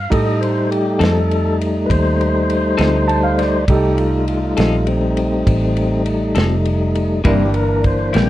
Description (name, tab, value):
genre	slow blues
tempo	67 BPM (dotted quarters)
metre	12/8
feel	straight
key	unclear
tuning	A4 = 440 Hz
part	warm grand piano	accompaniment	0.0-8.3 s	D4 to A5	-23 LUFS	right 4 dB	none
part	tonewheel organ	sustained chords	0.0-8.3 s	E3 to G5	-18 LUFS	left 1 dB	slow rotary speaker
part	vintage muted fingered electric bass	bass	0.0-8.3 s	F1 to A2	-19 LUFS	equal	none
part	warm soul drum kit	drums	0.1-8.3 s	kick drum, ride cymbal, snare drum	-22 LUFS	equal	none
part	clean electric guitar	accompaniment	1.0-8.3 s	C3 to A4	-19 LUFS	left 3 dB	harmonic tremolo
room	light reverb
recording	dry, close 1970s-style studio recording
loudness	-14 LUFS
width	side -14 dB against mid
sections	0.0-8.3 A section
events	tonewheel organ solo 0.0-8.3; grand piano fill 2.8-3.7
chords	0.0 F7; 7.3 C7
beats	| 0.12 1.01 1.90 2.79 | 3.69 4.58 5.47 6.36 | 7.25 8.15